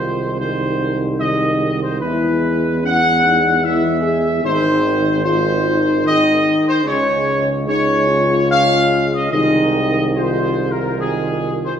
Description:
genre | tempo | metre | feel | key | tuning
classical | 74 BPM | 3/4 | straight | Ab major | A4 = 440 Hz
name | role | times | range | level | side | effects
mellow trumpet section | melody | 0.0-11.7 s | Ab4 to Gb5 | -18 LUFS | equal | none
dark French horn section | sustained chords | 0.0-11.8 s | Db4 to G#4 | -20 LUFS | left 3 dB | none
dark trombone section | sustained chords | 0.0-11.8 s | Db3 to Ab3 | -24 LUFS | right 3 dB | none
warm tuba | bass | 0.0-11.8 s | Ab1 to E2 | -21 LUFS | right 2 dB | none
room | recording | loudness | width
wet scoring stage reverb, RT60 1.9 s | none | -14 LUFS | side -8 dB against mid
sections
0.0-11.8 A section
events
none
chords
0.0 Ab/C; 2.0 E; 4.4 Ab; 6.9 Db5; 9.3 Ab/C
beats
0.39 1.19 | 2.00 2.84 3.64 | 4.45 5.25 6.05 | 6.86 7.68 8.50 | 9.33 10.15 10.98

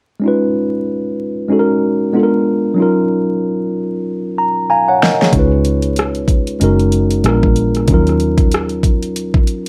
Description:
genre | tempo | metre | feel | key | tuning
R&B, neo-soul | 94 BPM | 4/4 | swing 58% on 16ths | Eb minor | A4 = 440 Hz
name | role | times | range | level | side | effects
tine electric piano | accompaniment | 0.2-9.7 s | F3 to Bb5 | -17 LUFS | equal | none
pop drum kit | drums | 5.0-9.7 s | hi-hat, kick drum, rim click, snare drum | -17 LUFS | equal | overdrive
vintage muted fingered electric bass | bass | 5.3-9.7 s | Gb1 to Eb2 | -19 LUFS | equal | none
room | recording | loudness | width
moderate studio reverb, RT60 0.6 s | vinyl crackle | -15 LUFS | mono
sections
0.2-9.7 A section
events
drum fill 4.1-5.3; tine electric piano fill 4.1-5.3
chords
0.2 Db9; 1.5 Gb6; 2.1 Bb7b9; 2.8 Ebm7; 5.3 Db9; 6.6 Gb6; 7.2 Bb7b9; 7.9 Ebm7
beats
| 0.22 0.86 1.50 2.14 | 2.77 3.41 4.05 4.69 | 5.33 5.97 6.61 7.24 | 7.88 8.52 9.16

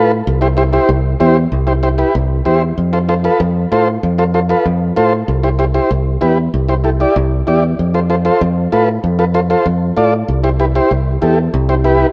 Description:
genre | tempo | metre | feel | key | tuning
latin, cumbia | 192 BPM | 4/4 | straight | C major | A4 = 441 Hz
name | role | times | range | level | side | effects
combo organ | accompaniment | 0.0-12.1 s | E4 to D5 | -17 LUFS | equal | none
fingered electric bass | bass | 0.0-12.0 s | C2 to A2 | -17 LUFS | equal | none
room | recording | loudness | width
moderate plate reverb, RT60 2.7 s | heard from further back in the room | -14 LUFS | mono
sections
0.0-1.5 A section; 1.5-11.5 B section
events
none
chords
0.3 C; 2.8 F; 5.3 C; 7.8 F; 10.3 C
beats
| 0.27 0.58 0.90 1.21 | 1.52 1.83 2.15 2.46 | 2.77 3.09 3.40 3.71 | 4.03 4.34 4.65 4.97 | 5.28 5.59 5.91 6.22 | 6.53 6.85 7.16 7.47 | 7.79 8.10 8.41 8.72 | 9.04 9.35 9.66 9.97 | 10.29 10.60 10.91 11.23 | 11.54 11.85

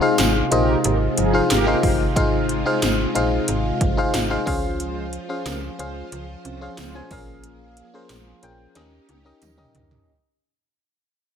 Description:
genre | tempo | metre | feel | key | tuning
1980s-style pop | 91 BPM | 4/4 | straight | Ab major | A4 = 444 Hz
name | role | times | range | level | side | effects
FM electric piano | accompaniment | 0.0-10.1 s | Db4 to Ab5 | -22 LUFS | left 2 dB | chorus
string machine, violas | sustained chords | 0.0-10.1 s | C3 to C5 | -28 LUFS | equal | ensemble chorus
mellow synth brass | stabs | 0.0-7.0 s | C3 to C5 | -28 LUFS | right 2 dB | chorus, ping-pong delay
slap-like FM bass | bass | 0.2-10.0 s | G1 to Eb2 | -26 LUFS | right 1 dB | none
80s electronic pad drums | drums | 0.2-10.1 s | hi-hat, kick drum, snare drum, tambourine, toms | -24 LUFS | equal | gated reverb on snare and toms, overdrive
tambourine | percussion | 0.2-9.6 s | none | -34 LUFS | right 12 dB | none
room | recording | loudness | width
light reverb | none | -18 LUFS | side -8 dB against mid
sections
0.0-10.1 A section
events
fade-out 0.0-10.1; drum fill 8.8-10.1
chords
0.0 Ab6; 4.5 Dbmaj7; 7.1 Bbm7; 8.8 Eb7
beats
0.19 0.84 1.50 | 2.16 2.82 3.48 4.14 | 4.80 5.46 6.12 6.78 | 7.44 8.10 8.76 9.42

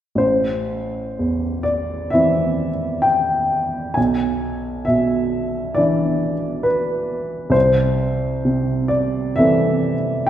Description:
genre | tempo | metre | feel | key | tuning
classical, romantic nocturne for solo piano | 59-69 BPM | 4/4 | rubato | A minor | A4 = 439 Hz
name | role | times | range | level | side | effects
warm upright piano | solo | 0.2-10.3 s | A1 to G#5 | -17 LUFS | equal | none
room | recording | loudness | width
wet scoring stage reverb, RT60 1.9 s | heard from further back in the room | -17 LUFS | side -11 dB against mid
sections
0.2-10.3 A section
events
none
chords
0.2 Am; 4.0 E7/B; 7.5 Am/C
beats
| 0.20 1.18 2.12 3.04 | 3.97 4.87 5.78 6.67 | 7.54 8.45 9.38 10.28

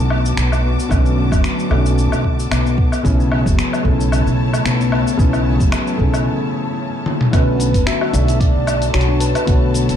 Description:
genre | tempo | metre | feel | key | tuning
organic downtempo | 112 BPM | 4/4 | swing 54% on 16ths | B minor | A4 = 442 Hz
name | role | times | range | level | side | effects
felt-muted upright piano | accompaniment | 0.0-10.0 s | C#3 to D5 | -23 LUFS | right 1 dB | sidechain pumping, digital delay
rich studio string section | sustained chords | 0.0-10.0 s | F#3 to D6 | -27 LUFS | left 1 dB | sidechain pumping
handpan | arpeggios | 0.0-10.0 s | F#3 to B4 | -22 LUFS | left 6 dB | vintage 12-bit sampler grit, digital delay
upright bass | bass | 0.0-10.0 s | F#1 to B1 | -17 LUFS | right 1 dB | none
dusty soul sampler-style drum kit | drums | 0.1-10.0 s | cabasa, finger snaps, hi-hat, toms, woodblock | -23 LUFS | left 1 dB | none
electronic kick drum | drums | 0.9-9.6 s | none | -17 LUFS | equal | none
breathy flute-like synth lead | melody | 7.3-9.7 s | B4 to E5 | -24 LUFS | right 2 dB | analog chorus, ping-pong delay
room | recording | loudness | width
light reverb | dark, warm production | -14 LUFS | side -9 dB against mid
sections
0.0-7.3 A section; 7.3-10.0 B section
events
break 6.3-7.3; drum fill 7.1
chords
0.0 Bm7; 3.0 A; 7.3 Bm7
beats
0.37 | 0.91 1.44 1.98 2.51 | 3.05 3.58 4.12 4.66 | 5.19 5.73 6.26 6.80 | 7.33 7.87 8.41 8.94 | 9.48

